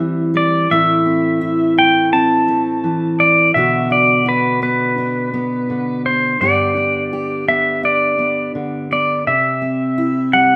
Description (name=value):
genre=acoustic folk duo or small band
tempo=84 BPM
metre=4/4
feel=straight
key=G major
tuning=A4 = 440 Hz
part: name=fingerpicked steel-string acoustic guitar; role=accompaniment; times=0.0-10.6 s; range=G2 to G4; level=-20 LUFS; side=equal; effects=plate reverb
part: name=pedal steel guitar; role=melody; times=0.4-10.6 s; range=B4 to A5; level=-18 LUFS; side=equal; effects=plate reverb, analog delay
room=wet studio reverb, RT60 0.5 s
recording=rough home demo mix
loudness=-16 LUFS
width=mono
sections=0.0-10.6 A section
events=none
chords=0.0 C; 0.7 Am; 3.6 Bm; 6.4 G; 9.3 C